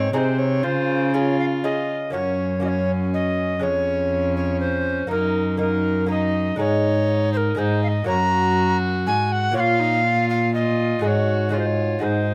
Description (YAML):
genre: classical, renaissance-style consort dance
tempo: 121 BPM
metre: 3/4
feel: straight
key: Db major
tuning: A4 = 440 Hz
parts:
  - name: breathy tenor recorder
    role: melody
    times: 0.0-12.3 s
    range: Bb4 to Bb5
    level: -25 LUFS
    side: equal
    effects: none
  - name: lute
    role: accompaniment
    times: 0.0-12.3 s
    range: F2 to Db5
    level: -30 LUFS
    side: equal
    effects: none
  - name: rich viola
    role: accompaniment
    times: 0.0-12.3 s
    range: C4 to Gb4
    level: -29 LUFS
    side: equal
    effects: none
  - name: rich cello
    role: bass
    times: 0.0-12.3 s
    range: F2 to Db3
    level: -26 LUFS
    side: equal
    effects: none
room: light reverb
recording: close, detailed microphones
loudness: -21 LUFS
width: mono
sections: 0.0-2.1 A section; 2.1-12.3 B section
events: none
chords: 0.0 Ab; 0.6 Db; 2.1 Gb; 3.6 Db/F; 5.1 Ebm/Gb; 6.6 Absus4; 8.1 Gb; 9.6 Bbm; 11.0 Ab7sus4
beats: 0.13 | 0.63 1.14 1.64 | 2.14 2.64 3.13 | 3.62 4.12 4.61 | 5.11 5.60 6.10 | 6.59 7.08 7.58 | 8.07 8.57 9.06 | 9.56 10.05 10.54 | 11.04 11.53 12.03